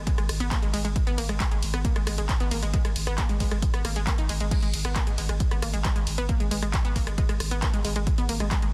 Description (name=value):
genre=driving peak-time techno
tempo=135 BPM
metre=4/4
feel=straight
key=G# minor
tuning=A4 = 440 Hz
part: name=saturated sub bass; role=bass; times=0.0-8.7 s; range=G#1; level=-32 LUFS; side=equal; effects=overdrive, sidechain pumping, low-pass filter
part: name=unison pluck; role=riff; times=0.1-8.7 s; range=G#3 to D#4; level=-35 LUFS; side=equal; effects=sidechain pumping, dub echo
part: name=electronic kick drum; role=drums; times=0.1-8.6 s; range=none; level=-28 LUFS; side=equal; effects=none
part: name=punchy analog drum machine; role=drums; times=0.1-8.7 s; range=crash cymbal, handclaps, hi-hat, ride cymbal, rim click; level=-35 LUFS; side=equal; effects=sidechain pumping on hats, sidechain pumping on cymbals
room=digital ambience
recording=dense, heavily limited modern master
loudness=-26 LUFS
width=mono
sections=0.0-8.7 A section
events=none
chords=none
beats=0.07 0.51 | 0.96 1.40 1.85 2.29 | 2.74 3.18 3.62 4.07 | 4.51 4.96 5.40 5.85 | 6.29 6.74 7.18 7.62 | 8.07 8.51